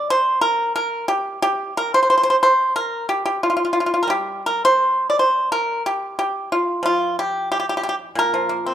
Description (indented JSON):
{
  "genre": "chinese traditional, Chinese solo plucked strings",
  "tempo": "90 BPM",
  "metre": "4/4",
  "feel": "rubato",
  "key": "G yu mode",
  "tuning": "A4 = 441 Hz",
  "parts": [
    { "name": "pipa", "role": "solo", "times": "0.0-8.7 s", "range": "Bb2 to D5", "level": "-17 LUFS", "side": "equal", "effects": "none" }
  ],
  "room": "light reverb",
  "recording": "dark, warm production",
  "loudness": "-17 LUFS",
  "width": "side -10 dB against mid",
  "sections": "0.0-8.7 A section",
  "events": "none",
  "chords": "none"
}